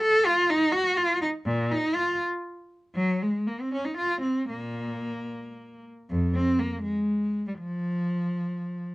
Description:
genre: classical, baroque-style suite movement for unaccompanied cello.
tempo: 110-126 BPM.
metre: 3/4.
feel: rubato.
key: Bb minor.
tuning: A4 = 441 Hz.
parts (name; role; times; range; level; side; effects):
rich cello; solo; 0.0-8.9 s; F2 to A4; -24 LUFS; equal; none.
room: light reverb.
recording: worn, warbling old tape, cassette tape, warbly pitch drift.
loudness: -24 LUFS.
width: side -20 dB against mid.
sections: 0.0-6.1 A section; 6.1-8.9 A section.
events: none.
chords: none.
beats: | 0.01 0.50 0.98 | 1.47 1.95 2.45 | 2.96 3.47 3.98 | 4.51 5.05 5.58 | 6.10 6.60 7.09 | 7.59 8.08 8.57.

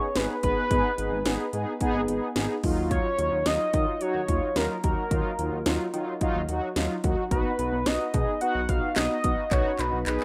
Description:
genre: synth-pop.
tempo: 109 BPM.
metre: 4/4.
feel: straight.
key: Eb minor.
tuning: A4 = 439 Hz.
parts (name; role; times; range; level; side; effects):
octave-doubled lead; melody; 0.0-10.2 s; Bb4 to F#5; -31 LUFS; equal; chorus, tape echo.
mellow synth brass; accompaniment; 0.0-10.2 s; Gb3 to Ab4; -31 LUFS; equal; chorus.
chorused synth bass; bass; 0.2-10.2 s; Ab1 to Eb3; -34 LUFS; equal; none.
house drum kit; drums; 0.2-10.2 s; handclaps, hi-hat, kick drum, snare drum; -31 LUFS; equal; none.
room: light reverb, digital ambience.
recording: rough home demo mix.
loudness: -26 LUFS.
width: mono.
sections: 0.0-10.2 A section.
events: drum fill 9.5-10.2.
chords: 0.0 Abm; 2.6 Ebmadd9; 7.3 B.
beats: 0.16 | 0.71 1.26 1.81 2.36 | 2.91 3.46 4.01 4.56 | 5.11 5.66 6.21 6.76 | 7.31 7.86 8.41 8.96 | 9.52 10.06.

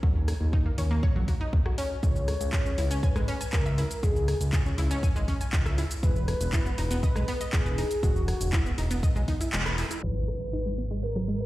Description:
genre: progressive house.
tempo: 120 BPM.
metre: 4/4.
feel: straight.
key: G# minor.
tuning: A4 = 442 Hz.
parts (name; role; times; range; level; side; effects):
analog pluck; arpeggios; 0.0-11.4 s; F#3 to G#5; -34 LUFS; equal; chorus, sidechain pumping, digital delay.
fat analog bass; bass; 0.0-11.5 s; E1 to D#2; -28 LUFS; equal; sidechain pumping.
electronic kick drum; drums; 0.0-9.4 s; none; -25 LUFS; equal; none.
house drum kit; drums; 0.3-11.5 s; cabasa, crash cymbal, handclaps, hi-hat, rim click; -35 LUFS; equal; low-pass filter on snare, low-pass filter on hats, low-pass filter on perc, low-pass filter on cymbals.
warm velvety synth lead; melody; 2.0-11.5 s; F#4 to C#5; -34 LUFS; left 1 dB; chorus, sidechain pumping, digital delay.
impact; sound effects; 10.0-11.5 s; none; -34 LUFS; equal; none.
room: light reverb, digital ambience.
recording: played on a big sound system in a bare room, large studio reverb, low-pass filter.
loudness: -24 LUFS.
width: side -17 dB against mid.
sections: 0.0-10.0 A section; 10.0-11.5 B section.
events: kick drops out 9.5-10.0; band accent 9.5; impact 10.0-11.5; filter sweep on synth arpeggio sound 10.0-11.5; filter sweep 10.0-11.5.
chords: 0.0 D#m; 2.0 C#m; 6.0 E5; 10.0 G#m.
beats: | 0.03 0.53 1.03 1.53 | 2.03 2.53 3.03 3.53 | 4.03 4.53 5.03 5.53 | 6.03 6.53 7.03 7.53 | 8.03 8.53 9.03 9.53 | 10.03 10.53 11.03.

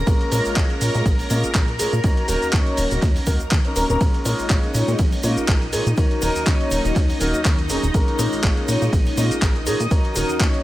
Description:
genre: filtered disco house.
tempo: 122 BPM.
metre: 4/4.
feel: swing 55% on 16ths.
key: Eb minor.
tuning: A4 = 442 Hz.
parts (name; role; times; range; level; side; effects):
string machine, full ensemble; sustained chords; 0.0-10.6 s; Eb4 to Bb5; -27 LUFS; left 1 dB; ensemble chorus, sidechain pumping.
plucky analog bass; bass; 0.0-10.5 s; Eb1 to Bb2; -24 LUFS; equal; sidechain pumping.
warm grand piano; accompaniment; 0.1-10.6 s; Gb3 to Db5; -24 LUFS; equal; phaser, sidechain pumping.
dusty soul sampler-style drum kit; drums; 0.1-10.6 s; handclaps, hi-hat, ride cymbal, shaker; -27 LUFS; right 1 dB; overdrive, sidechain pumping on hats, studio reverb, sidechain pumping on perc, sidechain pumping on cymbals.
electronic kick drum; drums; 0.1-10.5 s; none; -19 LUFS; equal; overdrive, studio reverb.
egg shaker; percussion; 0.1-10.5 s; none; -38 LUFS; left 8 dB; none.
room: little or no reverb.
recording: none.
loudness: -17 LUFS.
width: side -16 dB against mid.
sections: 0.0-10.6 A section.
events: none.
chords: 0.1 Bbm7; 2.0 Ebm7; 4.0 Bbm7; 6.0 Ebm7; 7.9 Bbm7; 9.9 Ebm7.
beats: | 0.07 0.56 1.06 1.55 | 2.04 2.53 3.02 3.52 | 4.01 4.50 4.99 5.48 | 5.97 6.47 6.96 7.45 | 7.94 8.43 8.93 9.42 | 9.91 10.40.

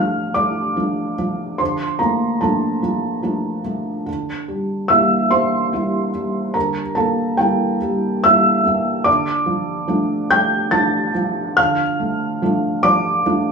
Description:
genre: neoclassical minimalist piano.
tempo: 72 BPM.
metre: 3/4.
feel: rubato.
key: D minor.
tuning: A4 = 441 Hz.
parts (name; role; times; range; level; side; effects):
felt-muted upright piano; solo; 0.0-13.5 s; D3 to A6; -16 LUFS; right 1 dB; none.
room: moderate large studio reverb, RT60 0.9 s.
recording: band playing live in one room, small room ambience.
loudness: -16 LUFS.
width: side -5 dB against mid.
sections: 0.0-13.5 A section.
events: none.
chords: 0.0 Dm; 4.1 Edim/D; 9.1 Dm.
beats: 0.77 | 1.60 2.42 3.25 | 4.07 4.90 5.73 | 6.55 7.38 8.24 | 9.07 9.90 10.73 | 11.58 12.41 13.25.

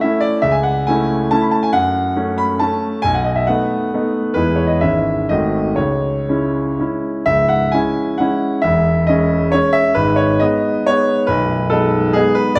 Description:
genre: classical, romantic triple-time dance for piano with dotted rhythms.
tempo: 112-151 BPM.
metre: 3/4.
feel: rubato.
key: C# minor.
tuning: A4 = 441 Hz.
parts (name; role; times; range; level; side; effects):
bright concert grand piano; solo; 0.0-12.6 s; B0 to B5; -16 LUFS; equal; none.
room: wet recital hall reverb, RT60 1.8 s.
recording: none.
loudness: -17 LUFS.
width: mono.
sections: 0.0-7.3 A section; 7.3-12.6 B section.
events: none.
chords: 0.4 A/C#; 1.7 F#m; 3.0 B7; 4.3 E; 4.8 C#m/G#; 5.3 G#7b9; 5.8 C#m; 8.6 C#m/E; 10.0 G#m; 11.3 G#m/B.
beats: 0.03 | 0.44 0.87 1.31 | 1.73 2.16 2.61 | 3.03 3.47 3.92 | 4.35 4.81 5.29 | 5.76 6.27 6.79 | 7.27 7.74 8.20 | 8.63 9.08 9.53 | 9.96 10.40 10.86 | 11.27 11.70 12.14 | 12.56.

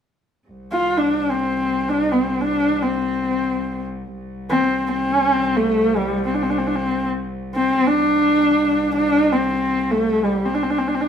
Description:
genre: mongolian traditional, Mongolian folk.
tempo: free time.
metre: none.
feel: none.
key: C zhi mode.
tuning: A4 = 443 Hz.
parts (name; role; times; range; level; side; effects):
muted cello; drone; 0.5-11.1 s; C2; -28 LUFS; equal; none.
warm horsehead fiddle; melody; 0.7-11.1 s; G3 to F4; -18 LUFS; equal; none.
room: wet studio reverb, RT60 0.9 s.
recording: band playing live in one room.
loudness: -17 LUFS.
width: side -8 dB against mid.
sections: 0.5-11.1 A section.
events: none.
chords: none.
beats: free time.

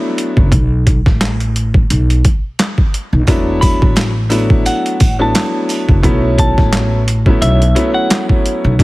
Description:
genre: hip hop, boom-bap hip-hop.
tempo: 87 BPM.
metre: 4/4.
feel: swing 55% on 16ths.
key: unclear.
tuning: A4 = 442 Hz.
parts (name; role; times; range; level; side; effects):
warm concert grand piano; accompaniment; 0.0-8.8 s; F#3 to E4; -17 LUFS; left 1 dB; cassette tape, high-pass filter, low-pass filter.
boom bap sampler-style drum kit; drums; 0.2-8.8 s; handclaps, hi-hat, kick drum, snare drum; -13 LUFS; equal; overdrive.
upright bass; bass; 0.4-8.8 s; E1 to B1; -14 LUFS; equal; none.
sleigh bells; percussion; 3.3-5.9 s; none; -29 LUFS; right 4 dB; none.
semi-hollow electric guitar; melody; 3.6-8.3 s; E5 to B5; -20 LUFS; left 1 dB; warbly pitch drift, high-pass filter, low-pass filter, tape echo.
room: small room ambience.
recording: heavily compressed radio sound.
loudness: -11 LUFS.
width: side -20 dB against mid.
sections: 0.0-8.8 A section.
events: none.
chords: 0.0 E9sus4; 0.5 Asus2; 3.3 E9sus4; 6.0 B9sus4.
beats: | 0.52 1.21 1.90 2.59 | 3.28 3.97 4.66 5.34 | 6.04 6.72 7.41 8.10 | 8.79.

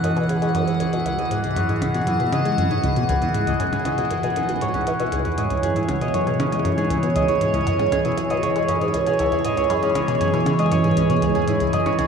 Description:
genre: ambient, sequencer-driven space music.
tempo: 118 BPM.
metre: 4/4.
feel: straight.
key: C# minor.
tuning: A4 = 440 Hz.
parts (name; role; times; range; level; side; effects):
evolving wavetable pad; sustained chords; 0.0-12.1 s; E3 to F#5; -21 LUFS; right 1 dB; phaser, built-in reverb.
concert harp; arpeggios; 0.0-12.1 s; C#4 to D#5; -27 LUFS; equal; auto-pan, ping-pong delay.
resonant blip pluck; riff; 0.0-12.1 s; C#2 to G#3; -24 LUFS; left 1 dB; phaser, ping-pong delay.
electronic hi-hat and percussion blips; percussion; 0.0-12.1 s; none; -35 LUFS; left 1 dB; overdrive, ping-pong delay.
pulsing gated texture; texture; 0.0-12.1 s; E3 to G#5; -33 LUFS; right 2 dB; chorus, built-in reverb.
room: wet cathedral reverb, RT60 6.1 s.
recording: dreamy mix soaked in reverb, cassette tape.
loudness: -18 LUFS.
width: side -6 dB against mid.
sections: 0.0-12.1 A section.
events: fade-in on harp 0.0-12.1; fade-in on synth texture 0.0-12.1.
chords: 0.0 C#madd9.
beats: 0.04 0.55 | 1.06 1.57 2.07 2.58 | 3.09 3.60 4.11 4.62 | 5.12 5.63 6.14 6.65 | 7.16 7.67 8.18 8.69 | 9.19 9.70 10.21 10.72 | 11.23 11.73.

